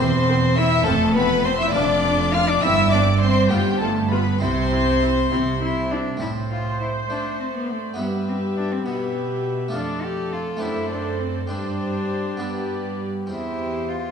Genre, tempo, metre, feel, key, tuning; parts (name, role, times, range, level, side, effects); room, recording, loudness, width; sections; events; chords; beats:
classical, baroque-style concerto movement with solo episodes; 68 BPM (dotted quarters); 6/8; straight; C major; A4 = 439 Hz
rich cello; melody; 0.0-14.1 s; G3 to G4; -25 LUFS; left 2 dB
warm chamber violin section; melody; 0.0-14.1 s; C5 to F6; -29 LUFS; equal
rich chamber violin section; second line; 0.0-14.1 s; G4 to F5; -26 LUFS; left 4 dB
dark chamber viola section; accompaniment; 0.0-14.1 s; C4 to C5; -30 LUFS; left 1 dB
harpsichord; accompaniment; 0.0-14.1 s; E2 to G4; -31 LUFS; left 1 dB
rich chamber cello section; bass; 0.0-14.1 s; E2 to A3; -26 LUFS; right 4 dB
rich chamber double bass section; bass; 0.0-6.1 s; E1 to C2; -25 LUFS; right 3 dB
wet concert hall reverb, RT60 2.4 s; minimal, uncompressed stereo recording; -19 LUFS; side -6 dB against mid
0.0-6.2 A section; 6.2-14.1 B section
0.0 C/E; 0.9 F; 1.7 Dm/F; 2.6 C/G; 3.5 G7; 4.4 C; 6.2 Am; 8.0 Em/G; 9.7 Dm/F; 10.6 D7/F#; 11.5 Gsus4; 12.4 G; 13.3 C/E
| 0.87 1.75 | 2.63 3.52 | 4.41 5.31 | 6.21 7.10 | 7.98 8.86 | 9.74 10.62 | 11.50 12.40 | 13.29